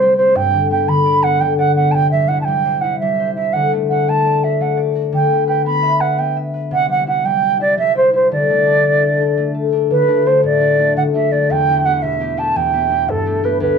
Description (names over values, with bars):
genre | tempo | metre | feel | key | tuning
celtic folk, Celtic slip jig | 113 BPM (dotted quarters) | 9/8 | straight | D mixolydian | A4 = 440 Hz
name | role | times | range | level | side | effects
mellow wooden flute | melody | 0.0-13.8 s | A4 to B5 | -15 LUFS | right 4 dB | none
concert harp | accompaniment | 0.0-13.8 s | D2 to E5 | -18 LUFS | left 4 dB | none
room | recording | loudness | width
wet studio reverb, RT60 0.6 s | dark, warm production | -13 LUFS | side -6 dB against mid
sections
0.0-9.9 A section; 9.9-13.8 B section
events
none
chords
0.4 G; 2.0 C; 3.5 D; 5.1 G6/D; 6.7 C; 8.3 D5; 9.9 D; 11.5 Em; 13.1 Gadd9